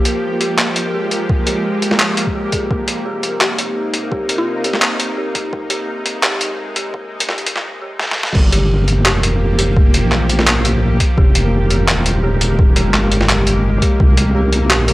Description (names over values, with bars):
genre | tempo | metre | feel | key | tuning
half-time drum and bass | 170 BPM | 4/4 | half-time | G phrygian | A4 = 440 Hz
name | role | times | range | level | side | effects
bowed-like drone | sustained chords | 0.0-14.9 s | C3 to G4 | -22 LUFS | equal | built-in reverb, sidechain pumping
dark detuned synth bell | arpeggios | 0.0-14.9 s | G4 to Ab4 | -25 LUFS | equal | chorus, vintage 12-bit sampler grit, low-pass filter, analog delay
pulsing gated texture | texture | 0.1-14.9 s | Bb3 to Bb4 | -26 LUFS | equal | chorus, built-in reverb
boom bap sampler-style drum kit | drums | 0.1-14.9 s | crash cymbal, handclaps, hi-hat, snare drum, tambourine | -17 LUFS | equal | overdrive
electronic kick drum | drums | 1.3-14.1 s | none | -14 LUFS | equal | overdrive
mallet-like synth pluck | melody | 3.4-4.7, 9.1-9.3, 14.7-14.9 s | F4 to G4 | -24 LUFS | left 1 dB | chorus, analog delay
deep soft wobble bass | bass | 8.4-14.9 s | Eb1 to C2 | -15 LUFS | equal | chorus
room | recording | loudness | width
light reverb | dry, gritty hardware recording, cassette tape, high-pass filter | -13 LUFS | side -18 dB against mid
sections
0.0-8.4 A section; 8.4-14.9 B section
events
build-up 0.0-8.4; filter sweep on synth bell 0.0-8.4; filter sweep 0.0-8.4; drum fill 8.0-8.4; drop 8.4-14.9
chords
0.0 Fmadd9; 2.7 Cm7; 5.5 Ab; 8.4 Gm7; 11.2 Fmadd9; 14.0 Cm7